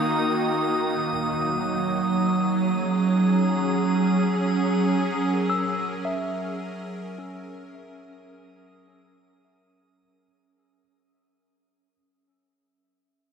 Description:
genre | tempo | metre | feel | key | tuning
ambient | free time | none | none | unclear | A4 = 439 Hz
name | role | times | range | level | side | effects
evolving wavetable pad | sustained chords | 0.0-10.0 s | D#3 to A#4 | -23 LUFS | right 2 dB | ensemble chorus, built-in reverb
tine electric piano | arpeggios | 0.0-12.0 s | C#4 to E6 | -34 LUFS | left 2 dB | fast stereo tremolo
drifting glass-harmonics texture | texture | 0.0-10.0 s | D#6 | -31 LUFS | equal | chorus, built-in reverb
room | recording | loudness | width
wet huge ambient reverb, RT60 8.3 s | none | -21 LUFS | side -6 dB against mid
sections
0.0-10.0 A section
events
fade-out 0.0-10.0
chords
0.0 D#m7; 0.9 F#add9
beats
free time

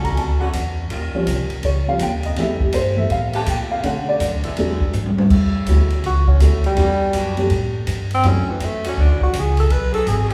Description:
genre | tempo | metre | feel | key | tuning
jazz, big band swing | 164 BPM | 4/4 | swing 65% on 8ths | A major | A4 = 440 Hz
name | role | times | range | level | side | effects
dark upright piano | accompaniment | 0.0-9.3 s | D3 to Bb5 | -25 LUFS | equal | none
edgy saxophone section | sustained chords | 0.0-10.3 s | C#3 to B4 | -33 LUFS | equal | none
upright bass | bass | 0.0-10.3 s | G#1 to B2 | -22 LUFS | equal | none
swinging big-band drum kit | drums | 0.0-10.3 s | crash cymbal, hi-hat, kick drum, ride cymbal, snare drum, toms | -26 LUFS | equal | none
breathy tenor saxophone | melody | 6.1-10.3 s | E3 to B4 | -24 LUFS | equal | none
room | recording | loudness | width
wet recital hall reverb, RT60 1.6 s | recorded in a church or concert hall, small room ambience | -19 LUFS | mono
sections
0.0-5.3 A section; 5.3-10.3 A section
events
upright piano solo 0.0-5.3; drum fill 4.9-5.3; tenor saxophone solo 5.3-10.3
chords
0.0 Dmaj7; 0.9 D#9; 2.4 Fmaj9#11; 3.8 Bm7; 4.6 E7; 5.3 A6; 6.8 Em9; 7.5 Gsus2; 8.2 Dmaj7; 9.7 G#m7b5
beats
0.18 0.54 | 0.91 1.28 1.64 2.01 | 2.38 2.74 3.11 3.48 | 3.84 4.21 4.58 4.94 | 5.31 5.67 6.04 6.41 | 6.77 7.14 7.50 7.87 | 8.24 8.60 8.97 9.34 | 9.70 10.07

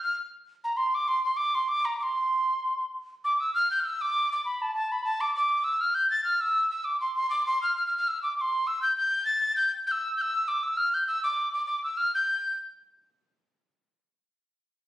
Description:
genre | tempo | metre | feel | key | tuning
celtic folk | 198 BPM | 4/4 | swing 54% on 8ths | G mixolydian from 3.2 s | A4 = 440 Hz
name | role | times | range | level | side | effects
tin whistle | solo | 0.0-12.6 s | A5 to A6 | -25 LUFS | equal | slapback echo
room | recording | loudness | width
moderate studio reverb, RT60 0.6 s | recorded on a phone in the room, studio reverb, compression | -25 LUFS | side -14 dB against mid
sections
0.0-3.2 A section; 3.2-12.9 B section; 12.9-14.1 C section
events
none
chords
none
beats
0.16 0.47 | 0.77 1.08 1.39 1.69 | 2.00 2.30 2.61 2.91 | 3.21 3.52 3.82 4.12 | 4.43 4.73 5.03 5.33 | 5.64 5.94 6.24 6.54 | 6.84 7.15 7.45 7.75 | 8.05 8.36 8.66 8.96 | 9.27 9.57 9.87 10.17 | 10.48 10.78 11.08 11.38 | 11.69 11.99 12.29

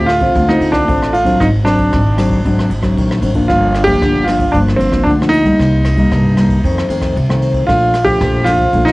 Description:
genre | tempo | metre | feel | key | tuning
samba and choro | 114 BPM | 4/4 | straight | unclear | A4 = 444 Hz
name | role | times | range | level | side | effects
clear concert grand piano | melody | 0.0-8.9 s | C4 to G4 | -14 LUFS | right 1 dB | cassette tape, plate reverb
nylon-string guitar | accompaniment | 0.0-8.9 s | F2 to F4 | -16 LUFS | left 1 dB | cassette tape
upright bass | bass | 0.0-8.9 s | G1 to F2 | -17 LUFS | equal | none
jazz brush drum kit | drums | 0.1-8.9 s | kick drum, ride cymbal, rim click | -21 LUFS | equal | cassette tape
room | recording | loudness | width
light reverb | home recording on cassette, nothing above 10.7 kHz | -11 LUFS | side -21 dB against mid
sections
0.0-8.9 A section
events
none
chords
0.0 Dm7; 1.4 Ab7#11; 3.5 Gm7; 5.6 Cm7; 6.6 F7; 7.7 Bbmaj7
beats
0.35 0.88 | 1.40 1.93 2.45 2.98 | 3.50 4.02 4.55 5.07 | 5.60 6.12 6.64 7.17 | 7.69 8.21 8.74

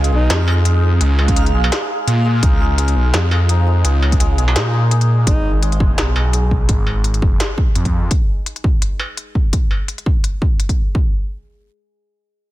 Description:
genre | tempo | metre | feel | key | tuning
half-time drum and bass | 169 BPM | 4/4 | swing 55% on 16ths, half-time | G# dorian | A4 = 440 Hz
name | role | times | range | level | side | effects
santur | arpeggios | 0.0-11.0 s | G#3 to G#4 | -27 LUFS | left 2 dB | low-pass filter, dub echo
phased detuned saw bass | bass | 0.0-8.1 s | F#1 to A#2 | -15 LUFS | equal | phaser
industrial drum kit | drums | 0.0-10.8 s | hi-hat, snare drum, struck metal | -22 LUFS | equal | none
backwards swelling texture | texture | 0.0-5.3 s | E#5 | -28 LUFS | right 4 dB | built-in reverb
mellow alto saxophone | melody | 0.1-0.4, 5.3-5.5 s | D#4 | -28 LUFS | equal | digital delay
electronic kick drum | drums | 1.3-11.0 s | none | -16 LUFS | equal | none
room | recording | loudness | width
little or no reverb | dense, heavily limited modern master | -14 LUFS | side -16 dB against mid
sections
0.0-5.3 A section; 5.3-10.9 B section; 10.9-12.5 C section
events
drop 0.0-5.3; kick drops out 4.9-5.3; filter sweep on santur 5.3-6.7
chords
0.0 C#; 5.3 G#m; 10.9 N.C.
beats
0.30 0.65 | 1.01 1.36 1.72 2.07 | 2.43 2.78 3.14 3.49 | 3.85 4.20 4.56 4.91 | 5.27 5.62 5.98 6.33 | 6.69 7.04 7.40 7.75 | 8.11 8.46 8.82 9.17 | 9.53 9.88 10.24 10.59 | 10.95

